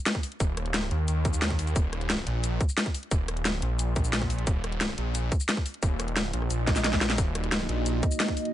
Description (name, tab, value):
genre	dark technical drum and bass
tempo	177 BPM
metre	4/4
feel	straight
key	Eb minor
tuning	A4 = 439 Hz
part	drum and bass drum kit	drums	0.1-8.5 s	hi-hat, rim click, shaker, snare drum	-29 LUFS	left 1 dB	overdrive
part	electronic kick drum	drums	0.1-8.4 s	none	-27 LUFS	equal	overdrive
part	wide detuned saw bass	bass	0.4-8.0 s	Eb1 to Eb2	-28 LUFS	equal	chorus
part	swell	sound effects	6.6-7.2 s	none	-35 LUFS	right 2 dB	none
part	dark analog pad	sustained chords	7.2-8.5 s	Bb3 to Eb5	-31 LUFS	right 1 dB	chorus, sidechain pumping
room	little or no reverb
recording	nothing above 10.5 kHz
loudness	-25 LUFS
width	side -12 dB against mid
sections	0.0-8.5 A section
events	swell 6.6-7.2; drum fill 6.7-7.2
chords	0.0 Ebm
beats	0.06 | 0.40 0.74 1.08 1.42 | 1.76 2.10 2.44 2.77 | 3.11 3.45 3.79 4.13 | 4.47 4.81 5.15 5.49 | 5.83 6.17 6.50 6.84 | 7.18 7.52 7.86 8.20